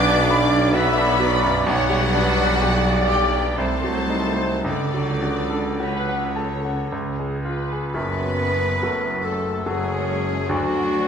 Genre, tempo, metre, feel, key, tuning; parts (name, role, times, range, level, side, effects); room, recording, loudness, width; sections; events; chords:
classical; 52-72 BPM; 3/4; rubato; F# minor; A4 = 441 Hz
clear concert grand piano; melody; 0.0-11.1 s; F#1 to D6; -23 LUFS; left 1 dB
rich studio violin section; melody; 0.0-11.1 s; F#4 to D6; -28 LUFS; left 3 dB
rich studio violin section; second line; 0.0-11.1 s; C#4 to D5; -30 LUFS; left 1 dB
warm studio viola section; accompaniment; 0.0-11.1 s; A3 to E5; -27 LUFS; equal
mellow tuba; bass; 0.0-11.1 s; F#1 to D2; -29 LUFS; right 2 dB
rich studio double bass section; bass; 0.0-11.1 s; B1 to F#2; -28 LUFS; right 2 dB
warm studio cello section; bass; 0.0-11.1 s; C#3 to D4; -29 LUFS; right 2 dB
warm clarinet; second line; 7.9-11.1 s; F#4 to B4; -24 LUFS; left 1 dB
wet scoring stage reverb, RT60 1.6 s; minimal, uncompressed stereo recording; -19 LUFS; side -7 dB against mid
0.0-7.9 A section; 7.9-11.1 B section
0.0 Bm; 1.7 G/B; 3.6 Cdim7; 4.7 F#m/C#; 6.9 C#; 7.9 F#m; 10.5 Bm/D (rootless)